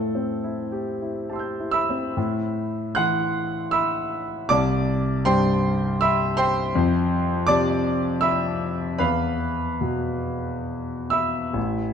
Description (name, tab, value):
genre	classical, impressionist solo piano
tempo	63-83 BPM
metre	3/4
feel	rubato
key	A minor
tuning	A4 = 440 Hz
part	clear concert grand piano	solo	0.0-11.9 s	A1 to G6	-21 LUFS	equal	none
room	wet recital hall reverb, RT60 1.9 s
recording	dark, warm production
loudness	-21 LUFS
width	side -7 dB against mid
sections	0.0-2.2 A section; 2.2-11.9 A section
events	none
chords	0.0 Am7; 2.2 Am6; 4.5 Cmaj9; 6.8 Fmaj7; 9.0 E5